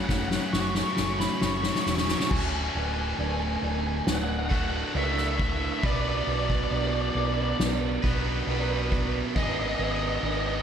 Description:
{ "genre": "post-rock", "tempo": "68 BPM", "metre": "4/4", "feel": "straight", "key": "D lydian", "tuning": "A4 = 440 Hz", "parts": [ { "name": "biting lead guitar", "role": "melody", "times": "0.0-10.6 s", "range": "D5 to C#6", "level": "-31 LUFS", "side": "left 1 dB", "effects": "overdrive, slapback echo, tape echo" }, { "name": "deep dark ambient pad", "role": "sustained chords", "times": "0.9-10.6 s", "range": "A3 to E5", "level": "-40 LUFS", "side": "right 2 dB", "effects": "none" }, { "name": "twelve-string electric guitar", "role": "arpeggios", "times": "0.0-2.3 s", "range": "F#2 to F#4", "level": "-36 LUFS", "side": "left 1 dB", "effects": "slapback echo, tape echo" }, { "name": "distorted electric guitar", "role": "riff", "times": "0.0-10.6 s", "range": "D2 to B4", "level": "-31 LUFS", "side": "right 1 dB", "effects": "overdrive" }, { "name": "hollow-body short-scale fingered electric bass", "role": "bass", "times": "0.1-10.6 s", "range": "D1 to C#2", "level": "-31 LUFS", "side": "equal", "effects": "none" }, { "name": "soft-mallet drum kit", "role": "drums", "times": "0.1-10.4 s", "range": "crash cymbal, kick drum, ride cymbal, snare drum", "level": "-29 LUFS", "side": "equal", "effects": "none" } ], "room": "moderate concert hall reverb, RT60 2.1 s", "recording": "big arena sound", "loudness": "-24 LUFS", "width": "side -8 dB against mid", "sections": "0.0-2.3 A section; 2.3-10.6 B section", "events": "build-up 0.0-2.3; drum fill 0.0-2.3", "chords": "0.0 F#m; 2.3 D; 5.8 Bm; 9.4 G#m", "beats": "0.53 1.42 | 2.30 3.19 4.07 4.95 | 5.84 6.72 7.60 8.48 | 9.37 10.25" }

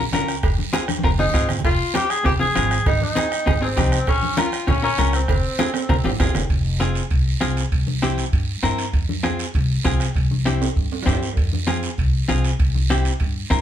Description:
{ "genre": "latin, cumbia", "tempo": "197 BPM", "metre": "4/4", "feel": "straight", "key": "F minor, F harmonic minor from 6.5 s", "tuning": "A4 = 439 Hz", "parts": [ { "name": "semi-hollow electric guitar", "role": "accompaniment", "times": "0.0-13.6 s", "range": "C4 to Db5", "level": "-24 LUFS", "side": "left 1 dB", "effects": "none" }, { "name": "upright bass", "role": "bass", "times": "0.0-13.6 s", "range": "F1 to G2", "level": "-22 LUFS", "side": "equal", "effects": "none" }, { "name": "bombo", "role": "percussion", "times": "0.1-13.6 s", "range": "none", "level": "-23 LUFS", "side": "right 1 dB", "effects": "none" }, { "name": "congas", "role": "percussion", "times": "0.1-13.6 s", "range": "none", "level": "-28 LUFS", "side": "left 1 dB", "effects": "none" }, { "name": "cowbell and timbales", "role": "percussion", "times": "0.1-13.6 s", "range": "none", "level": "-32 LUFS", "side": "right 6 dB", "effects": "none" }, { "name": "guiro", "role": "percussion", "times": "0.1-13.6 s", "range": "none", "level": "-32 LUFS", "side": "right 6 dB", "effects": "none" }, { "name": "warm tenor saxophone", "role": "second line", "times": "1.2-6.2 s", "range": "C4 to Ab4", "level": "-22 LUFS", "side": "left 1 dB", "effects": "none" } ], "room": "moderate studio reverb, RT60 0.7 s", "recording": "heard from further back in the room", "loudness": "-18 LUFS", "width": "side -10 dB against mid", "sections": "0.0-6.5 A section; 6.5-13.6 B section", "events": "tenor saxophone solo 0.0-6.5; drum fill 0.9-1.7, 5.6-6.5, 10.6-11.4", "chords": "0.4 Fm; 2.9 Ab; 4.1 Bbm; 5.3 Fm; 7.7 C7; 8.9 Fm; 10.2 C; 11.4 Fm; 12.6 C", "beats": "0.13 | 0.44 0.74 1.04 1.35 | 1.65 1.95 2.26 2.56 | 2.86 3.17 3.47 3.77 | 4.08 4.38 4.68 4.99 | 5.29 5.59 5.90 6.20 | 6.50 6.81 7.11 7.42 | 7.72 8.03 8.33 8.63 | 8.94 9.24 9.55 9.85 | 10.16 10.46 10.77 11.07 | 11.38 11.68 11.99 12.29 | 12.60 12.90 13.20 13.51" }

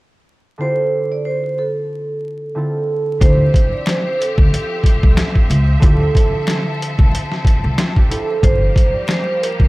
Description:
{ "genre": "hip hop, boom-bap hip-hop", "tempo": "92 BPM", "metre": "4/4", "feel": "swing 57% on 16ths", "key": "D minor", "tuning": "A4 = 438 Hz", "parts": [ { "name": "vibraphone with soft mallets", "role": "melody", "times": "0.6-9.7 s", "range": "A4 to D5", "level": "-21 LUFS", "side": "right 1 dB", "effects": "high-pass filter, low-pass filter" }, { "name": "concert harp", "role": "accompaniment", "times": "0.6-9.7 s", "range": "D3 to C5", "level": "-23 LUFS", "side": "right 2 dB", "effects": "high-pass filter, low-pass filter" }, { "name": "clear studio string section", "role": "sustained chords", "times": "3.2-9.7 s", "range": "F3 to E5", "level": "-27 LUFS", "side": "left 2 dB", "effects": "high-pass filter, low-pass filter" }, { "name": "upright bass", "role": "bass", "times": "3.2-9.7 s", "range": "G1 to D2", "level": "-16 LUFS", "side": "equal", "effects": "none" }, { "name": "trip hop sampler-style drum kit", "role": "drums", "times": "3.2-9.7 s", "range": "hi-hat, kick drum, snare drum", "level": "-14 LUFS", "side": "equal", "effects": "none" }, { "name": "finger snap", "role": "percussion", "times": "3.9-9.3 s", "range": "none", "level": "-32 LUFS", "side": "left 6 dB", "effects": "none" } ], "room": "little or no reverb", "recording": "vinyl crackle", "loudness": "-14 LUFS", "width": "side -20 dB against mid", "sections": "0.6-3.2 A section; 3.2-9.7 B section", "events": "none", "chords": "0.6 Dm11; 8.4 Gm7", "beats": "| 0.61 1.26 1.91 2.56 | 3.21 3.87 4.52 5.17 | 5.82 6.48 7.13 7.78 | 8.43 9.08" }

